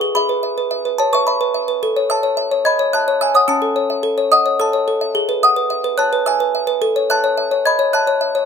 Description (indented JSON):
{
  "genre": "classical, lullaby for music box",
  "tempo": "108 BPM",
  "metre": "3/4",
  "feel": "straight",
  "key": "E major",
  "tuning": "A4 = 441 Hz",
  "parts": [
    { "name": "music box", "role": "solo", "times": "0.0-8.5 s", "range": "C#4 to G#6", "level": "-14 LUFS", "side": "equal", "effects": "none" }
  ],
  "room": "moderate studio reverb, RT60 0.6 s",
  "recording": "none",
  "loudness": "-14 LUFS",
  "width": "side -6 dB against mid",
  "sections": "0.0-8.5 A section",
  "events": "none",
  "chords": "0.2 E/G#; 1.8 A; 3.5 A/C#; 5.2 E/G#; 6.8 F#m7/A",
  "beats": "| 0.16 0.71 1.27 | 1.83 2.38 2.94 | 3.49 4.04 4.60 | 5.15 5.71 6.26 | 6.82 7.38 7.94"
}